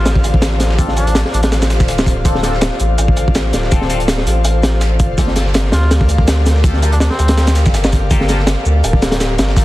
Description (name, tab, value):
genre	drum and bass, jungle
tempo	164 BPM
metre	4/4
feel	swing 54% on 16ths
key	D minor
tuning	A4 = 440 Hz
part	trumpet with cup mute	melody	0.0-1.5, 5.7-7.6 s	C4 to F4	-26 LUFS	equal	vintage 12-bit sampler grit, dub echo
part	airy breathy pad	sustained chords	0.0-9.6 s	F4 to F5	-22 LUFS	left 2 dB	chorus
part	saturated sub bass	bass	0.0-9.6 s	D1 to D2	-15 LUFS	equal	none
part	crunchy breakbeat drum kit	drums	0.1-9.6 s	hi-hat, kick drum, snare drum	-15 LUFS	equal	none
part	electronic shaker and snare drum	drums	0.1-9.6 s	none	-27 LUFS	right 2 dB	high-pass filter on perc, high-pass filter on snare, high-pass filter on room
part	band-passed chord stab	stabs	0.8-9.6 s	Bb3 to A4	-27 LUFS	left 3 dB	phaser, dub echo
room	little or no reverb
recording	dense, heavily limited modern master, vinyl crackle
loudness	-11 LUFS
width	side -16 dB against mid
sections	0.0-9.6 A section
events	none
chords	0.0 Dm7; 5.2 Gm9